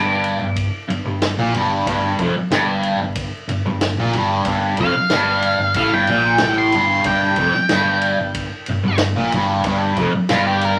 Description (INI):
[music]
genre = psychedelic rock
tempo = 92 BPM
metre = 4/4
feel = straight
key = G minor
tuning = A4 = 439 Hz
[part]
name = octave-fuzz lead guitar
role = melody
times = 0.0-10.8 s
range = F4 to D6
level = -21 LUFS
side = equal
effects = distortion
[part]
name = fuzz guitar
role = riff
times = 0.0-10.8 s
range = F2 to Bb2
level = -21 LUFS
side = equal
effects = distortion, phaser
[part]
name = fingered electric bass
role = bass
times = 0.0-10.7 s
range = F1 to Bb1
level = -30 LUFS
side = equal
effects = none
[part]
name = vintage drum kit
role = drums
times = 0.2-10.8 s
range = kick drum, ride cymbal, snare drum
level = -28 LUFS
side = equal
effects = none
[sound]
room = wet studio reverb, RT60 0.5 s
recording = vinyl crackle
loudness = -18 LUFS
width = mono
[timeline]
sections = 0.0-10.8 A section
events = lead electric guitar solo 0.0-10.8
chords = 0.0 Gm